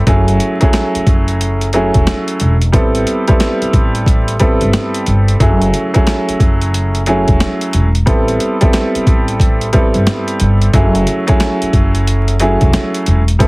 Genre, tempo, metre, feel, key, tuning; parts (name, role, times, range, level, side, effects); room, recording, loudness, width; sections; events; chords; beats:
hip hop, boom-bap hip-hop; 90 BPM; 4/4; swing 63% on 16ths; F# minor; A4 = 440 Hz
upright bass; bass; 0.0-13.5 s; E1 to A1; -14 LUFS; equal
clear upright piano; accompaniment; 0.1-13.5 s; F#3 to A4; -15 LUFS; right 1 dB; cassette tape, high-pass filter, low-pass filter
boom bap sampler-style drum kit; drums; 0.1-13.5 s; hi-hat, kick drum, snare drum; -13 LUFS; equal; overdrive
little or no reverb; heavily compressed radio sound, multiband compression, vinyl crackle; -10 LUFS; side -24 dB against mid
0.0-13.5 A section
0.1 F#m9; 2.7 Am9; 5.4 F#m9; 8.1 Am9; 10.7 F#m9
| 0.07 0.74 1.41 2.07 | 2.74 3.40 4.07 4.74 | 5.41 6.07 6.74 7.41 | 8.07 8.74 9.40 10.07 | 10.74 11.40 12.07 12.74 | 13.40